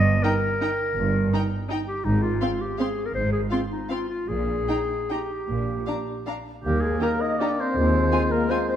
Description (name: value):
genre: classical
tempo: 141-178 BPM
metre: 3/4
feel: rubato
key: Eb major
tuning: A4 = 440 Hz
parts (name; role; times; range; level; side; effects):
- clear clarinet; second line; 0.0-8.8 s; Eb4 to Eb5; -28 LUFS; left 2 dB; none
- clear studio cello section; bass; 0.0-8.1 s; Eb2 to Bb2; -28 LUFS; right 2 dB; none
- rich studio double bass section; bass; 0.0-8.1 s; G1 to Eb2; -28 LUFS; right 2 dB; none
- rich studio violin section; melody; 0.2-8.6 s; Ab5 to C6; -38 LUFS; left 3 dB; none
- clear studio violin section; second line; 0.2-8.6 s; F4 to G5; -36 LUFS; left 2 dB; none
- rich studio viola section; accompaniment; 0.2-8.6 s; C4 to Eb4; -32 LUFS; right 1 dB; none
- warm oboe; second line; 6.6-8.8 s; G4 to Eb5; -28 LUFS; right 2 dB; none
- dark French horn section; sustained chords; 6.6-8.8 s; G3 to Eb4; -28 LUFS; left 4 dB; none
- mellow silver concert flute; second line; 6.7-8.8 s; G4 to Eb5; -28 LUFS; left 4 dB; none
- mellow bassoon; accompaniment; 6.7-8.8 s; Ab3 to Bb3; -30 LUFS; left 1 dB; none
room: moderate recital hall reverb, RT60 1.6 s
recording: none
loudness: -22 LUFS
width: side -10 dB against mid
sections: 0.0-6.6 A section; 6.6-8.8 B section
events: none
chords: 0.0 Eb/G; 2.1 Fm/Ab; 4.3 Eb/Bb; 5.5 Bb; 6.6 Eb; 7.8 Fm7/Eb